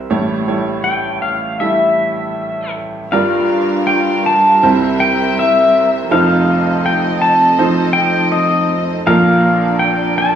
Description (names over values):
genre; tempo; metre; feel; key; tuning
acoustic folk-pop ballad; 81 BPM; 4/4; straight; unclear; A4 = 440 Hz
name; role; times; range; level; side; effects
bright upright piano; accompaniment; 0.0-10.4 s; F1 to E5; -16 LUFS; right 2 dB; none
pedal steel guitar; melody; 0.8-10.4 s; Eb5 to A5; -14 LUFS; left 2 dB; none
dark chamber string section; sustained chords; 3.1-10.4 s; F3 to F5; -20 LUFS; equal; none
room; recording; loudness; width
wet recital hall reverb, RT60 1.8 s; studio reverb; -12 LUFS; side -9 dB against mid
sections
0.0-3.1 A section; 3.1-10.4 B section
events
none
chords
0.1 A7; 3.1 Gm7; 4.6 C7; 6.1 F7; 9.1 Bbmaj7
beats
| 0.10 0.85 1.60 2.36 | 3.12 3.87 4.62 5.36 | 6.11 6.85 7.59 8.32 | 9.06 9.80